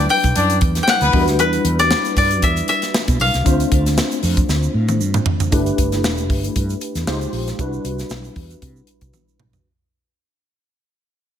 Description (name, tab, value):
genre	polished 1980s jazz-funk pop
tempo	116 BPM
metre	4/4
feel	swing 54% on 16ths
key	unclear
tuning	A4 = 440 Hz
part	koto	melody	0.0-5.0 s	B4 to G5	-19 LUFS	left 2 dB	none
part	warm horn section	second line	0.0-1.2 s	B3 to D5	-22 LUFS	left 3 dB	none
part	mellow tine electric piano	accompaniment	0.0-9.7 s	F#3 to C5	-23 LUFS	left 2 dB	medium stereo tremolo, ensemble chorus
part	mellow fretless electric bass	bass	0.0-9.6 s	E1 to C3	-20 LUFS	right 1 dB	none
part	tight funk drum kit	drums	0.1-9.6 s	hi-hat, kick drum, snare drum, toms	-20 LUFS	equal	gated reverb
part	egg shaker	percussion	0.1-9.6 s	none	-34 LUFS	right 13 dB	none
room	small room reverb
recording	none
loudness	-15 LUFS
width	side -9 dB against mid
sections	0.0-5.5 A section; 5.5-9.7 B section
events	drum fill 4.5-5.5, 9.1-9.7; fade-out 5.5-9.7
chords	0.0 Cmaj9#11 (rootless); 3.5 Dm7; 5.5 G6; 7.1 C#maj9#11; 7.6 Cmaj9#11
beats	0.36 0.88 | 1.39 1.91 2.43 2.94 | 3.46 3.98 4.49 5.01 | 5.53 6.04 6.56 7.08 | 7.59 8.11 8.62 9.14